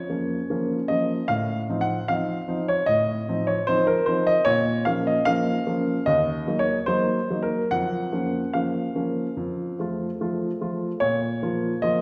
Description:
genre	classical-period piano sonatina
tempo	74 BPM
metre	4/4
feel	straight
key	Bb minor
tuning	A4 = 440 Hz
part	warm baby grand piano	solo	0.0-12.0 s	Eb2 to Gb5	-24 LUFS	equal	none
room	wet recital hall reverb, RT60 1.6 s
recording	heard from further back in the room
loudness	-24 LUFS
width	mono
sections	0.0-12.0 A section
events	none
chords	0.0 Bbm; 1.3 F7/A; 4.5 Bbm; 6.1 Ebm; 7.7 Bbm/F; 9.4 F; 11.0 Bbm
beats	0.49 | 1.29 2.08 2.88 3.67 | 4.47 5.27 6.07 6.88 | 7.73 8.55 9.38 10.20 | 11.02 11.83

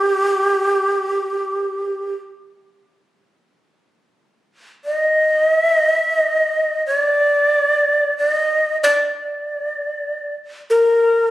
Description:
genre	japanese traditional, Japanese chamber music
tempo	free time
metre	none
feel	none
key	G hirajoshi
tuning	A4 = 440 Hz
part	breathy shakuhachi	solo	0.0-11.3 s	G4 to Eb5	-16 LUFS	equal	none
room	light reverb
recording	recorded on a phone in the room, studio reverb, compression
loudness	-16 LUFS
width	side -15 dB against mid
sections	0.0-3.3 A section; 3.3-11.3 A section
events	none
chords	none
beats	free time

